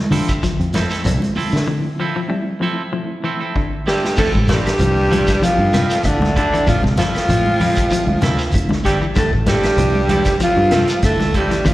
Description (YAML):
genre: afrobeat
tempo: 96 BPM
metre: 4/4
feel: swing 53% on 16ths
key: D minor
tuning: A4 = 440 Hz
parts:
  - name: reed electric piano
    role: accompaniment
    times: 0.0-11.7 s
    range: F3 to E4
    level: -27 LUFS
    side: right 2 dB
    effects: tremolo, slapback echo
  - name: semi-hollow electric guitar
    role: arpeggios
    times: 0.0-11.7 s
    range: C3 to G3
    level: -24 LUFS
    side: left 4 dB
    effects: none
  - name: clean electric guitar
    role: stabs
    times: 0.1-11.5 s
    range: F3 to A4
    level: -27 LUFS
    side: right 5 dB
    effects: spring reverb, slapback echo
  - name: fingered electric bass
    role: bass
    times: 0.1-11.7 s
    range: A1 to D3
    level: -20 LUFS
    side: equal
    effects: none
  - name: vintage drum kit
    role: drums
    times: 0.1-11.7 s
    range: crash cymbal, hi-hat, kick drum, snare drum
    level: -22 LUFS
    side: equal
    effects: none
  - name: congas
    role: percussion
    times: 0.1-11.7 s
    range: none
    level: -23 LUFS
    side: equal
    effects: none
  - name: shekere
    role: percussion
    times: 0.1-11.7 s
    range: none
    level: -25 LUFS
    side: equal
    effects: none
  - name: claves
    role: percussion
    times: 0.3-11.7 s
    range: none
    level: -34 LUFS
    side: left 2 dB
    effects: none
  - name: warm alto saxophone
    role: melody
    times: 3.9-11.7 s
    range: D4 to A4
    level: -19 LUFS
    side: equal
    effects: slapback echo
  - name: clear baritone saxophone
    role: second line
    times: 3.9-11.7 s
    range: D2 to A2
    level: -26 LUFS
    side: left 1 dB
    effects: slapback echo
  - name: raspy tenor saxophone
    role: second line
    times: 3.9-11.7 s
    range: D3 to A3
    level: -25 LUFS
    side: right 3 dB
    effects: slapback echo
room: small room ambience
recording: live gig heard through the venue's PA, recital hall reverb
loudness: -14 LUFS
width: side -16 dB against mid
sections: 0.0-4.2 A section; 4.2-11.7 B section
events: break 1.7-4.2; drum fill 3.6-4.2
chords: 0.0 Dm9